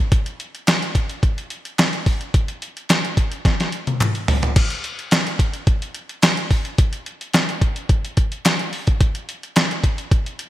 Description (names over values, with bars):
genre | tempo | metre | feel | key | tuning
funk | 108 BPM | 4/4 | straight | none | none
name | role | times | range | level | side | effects
clean 12-bit digital drum machine | drums | 0.1-10.5 s | crash cymbal, hi-hat, kick drum, snare drum, toms | -17 LUFS | equal | gated reverb
group handclap | percussion | 0.7-9.7 s | none | -30 LUFS | left 1 dB | none
room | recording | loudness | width
light reverb | bright 1980s-style digital production | -18 LUFS | side -14 dB against mid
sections
0.0-4.6 A section; 4.6-10.5 B section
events
drum fill 3.5-4.6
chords
none